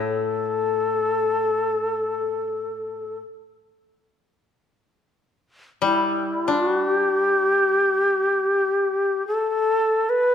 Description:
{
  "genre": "japanese traditional, Japanese chamber music",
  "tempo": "free time",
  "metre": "none",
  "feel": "none",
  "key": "unclear",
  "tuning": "A4 = 440 Hz",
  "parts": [
    { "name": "breathy reedy shakuhachi", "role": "melody", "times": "0.0-10.3 s", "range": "G4 to B4", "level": "-20 LUFS", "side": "left 1 dB", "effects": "none" },
    { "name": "koto", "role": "accompaniment", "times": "0.0-9.2 s", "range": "A2 to D4", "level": "-26 LUFS", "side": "left 4 dB", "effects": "none" }
  ],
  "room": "moderate scoring stage reverb, RT60 1.6 s",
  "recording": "minimal, uncompressed stereo recording",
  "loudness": "-20 LUFS",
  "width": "side -8 dB against mid",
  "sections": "0.0-10.3 A section",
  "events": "none",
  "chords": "none"
}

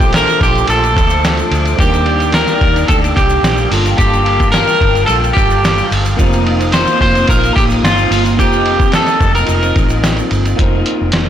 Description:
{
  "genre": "indie pop, bedroom pop",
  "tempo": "109 BPM",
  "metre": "4/4",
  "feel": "straight",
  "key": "unclear",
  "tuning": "A4 = 441 Hz",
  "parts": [
    { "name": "electric guitar at the edge of break-up", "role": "melody", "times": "0.0-10.3 s", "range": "F4 to C5", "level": "-15 LUFS", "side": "equal", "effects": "lush chorus, slapback echo" },
    { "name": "electric guitar through a small old amp", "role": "accompaniment", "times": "0.0-11.3 s", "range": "Bb2 to Bb4", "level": "-21 LUFS", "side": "left 4 dB", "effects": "lush chorus, vibrato effect" },
    { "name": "tine electric piano", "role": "accompaniment", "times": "0.0-11.3 s", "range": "F3 to A5", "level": "-23 LUFS", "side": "right 4 dB", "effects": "overdrive, fast stereo tremolo, cassette tape" },
    { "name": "phased analog pad", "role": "sustained chords", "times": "0.0-10.6 s", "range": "Bb3 to Eb6", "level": "-22 LUFS", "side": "equal", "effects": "phaser, chorus" },
    { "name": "vintage muted fingered electric bass", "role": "bass", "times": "0.0-11.3 s", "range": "F1 to Eb2", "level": "-17 LUFS", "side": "equal", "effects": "transformer saturation" },
    { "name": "lo-fi sampler-style drum kit", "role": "drums", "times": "0.0-11.3 s", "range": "hi-hat, kick drum, ride cymbal, snare drum", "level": "-15 LUFS", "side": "equal", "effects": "none" },
    { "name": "tube shaker", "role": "percussion", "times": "0.0-10.6 s", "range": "none", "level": "-35 LUFS", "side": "right 4 dB", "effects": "none" }
  ],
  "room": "light reverb",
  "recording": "blown-out, overdriven recording, overdrive",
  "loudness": "-10 LUFS",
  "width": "side -10 dB against mid",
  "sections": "0.0-10.6 A section",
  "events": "none",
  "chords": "0.0 Bbmaj7; 1.8 Ebmaj7; 3.7 Gm9; 6.2 F7sus4"
}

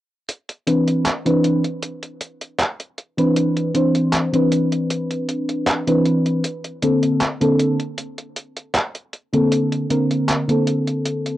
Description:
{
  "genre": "vaporwave",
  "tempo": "78 BPM",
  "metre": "4/4",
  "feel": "straight",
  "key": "unclear",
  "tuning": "A4 = 440 Hz",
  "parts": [
    { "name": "detuned 8-bit digital drum machine", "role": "drums", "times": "0.3-11.4 s", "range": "handclaps, hi-hat", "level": "-23 LUFS", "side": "equal", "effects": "cassette tape" },
    { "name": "mellow FM electric piano", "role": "accompaniment", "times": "0.7-11.4 s", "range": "D3 to C5", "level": "-17 LUFS", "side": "equal", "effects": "wide subtle chorus, cassette tape, analog delay" }
  ],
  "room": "wet small room reverb, RT60 0.5 s",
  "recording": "home recording on cassette",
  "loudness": "-17 LUFS",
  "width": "side -14 dB against mid",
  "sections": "0.3-11.4 A section",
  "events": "none",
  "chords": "0.3 Cmaj9; 6.4 Bbmaj9"
}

